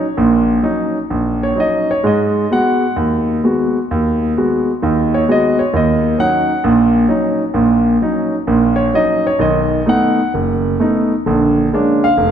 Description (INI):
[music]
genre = solo jazz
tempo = 130 BPM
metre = 4/4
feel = swing 66% on 8ths, rubato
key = Eb minor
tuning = A4 = 440 Hz
[part]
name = clear concert grand piano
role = solo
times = 0.0-12.3 s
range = F1 to Gb5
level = -12 LUFS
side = equal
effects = none
[sound]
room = wet concert hall reverb, RT60 1.9 s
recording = none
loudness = -12 LUFS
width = side -8 dB against mid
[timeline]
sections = 0.0-12.3 A section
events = grand piano solo 0.0-12.3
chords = 0.0 Ebm7; 2.0 Abm7; 5.7 Ebm7; 9.4 B7; 11.3 Bb7#9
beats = | 0.18 0.64 1.10 1.57 | 2.04 2.51 2.98 3.44 | 3.91 4.37 4.83 5.28 | 5.74 6.20 6.65 7.10 | 7.55 8.01 8.47 8.94 | 9.40 9.87 10.33 10.80 | 11.26 11.72 12.18